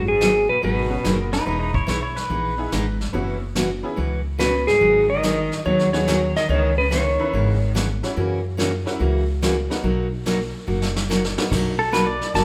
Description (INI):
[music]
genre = country, western swing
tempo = 143 BPM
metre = 4/4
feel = swing 67% on 8ths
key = B major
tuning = A4 = 440 Hz
[part]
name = clean lap steel guitar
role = melody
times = 0.0-1.3, 4.4-7.7 s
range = G#4 to D#5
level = -22 LUFS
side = equal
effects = none
[part]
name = rich cello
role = second line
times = 0.0-1.3, 4.4-7.7 s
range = G#2 to F#3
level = -29 LUFS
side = equal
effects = none
[part]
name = picked steel-string acoustic guitar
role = accompaniment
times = 0.0-12.4 s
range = B2 to G#4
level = -27 LUFS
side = equal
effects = none
[part]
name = upright bass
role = bass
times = 0.0-12.4 s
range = E1 to F#2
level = -27 LUFS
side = equal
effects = none
[part]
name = vintage brush drum kit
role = drums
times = 0.2-12.4 s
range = brushed snare drum, crash cymbal, hi-hat, kick drum, snare drum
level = -30 LUFS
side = equal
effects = none
[part]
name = tack piano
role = accompaniment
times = 0.9-11.5 s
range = B3 to C#5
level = -32 LUFS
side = equal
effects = none
[part]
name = pedal steel guitar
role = second line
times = 1.3-3.0, 11.8-12.4 s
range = D#4 to A5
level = -26 LUFS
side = equal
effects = none
[sound]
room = moderate large studio reverb, RT60 1.1 s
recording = band playing live in one room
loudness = -21 LUFS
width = mono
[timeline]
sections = 0.0-11.5 A section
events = drum fill 10.7-11.5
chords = 0.0 G#m7; 1.5 Emaj7; 3.1 F#7sus4; 4.8 G#m7; 6.5 C#m9; 8.2 F#7; 9.8 Bmaj7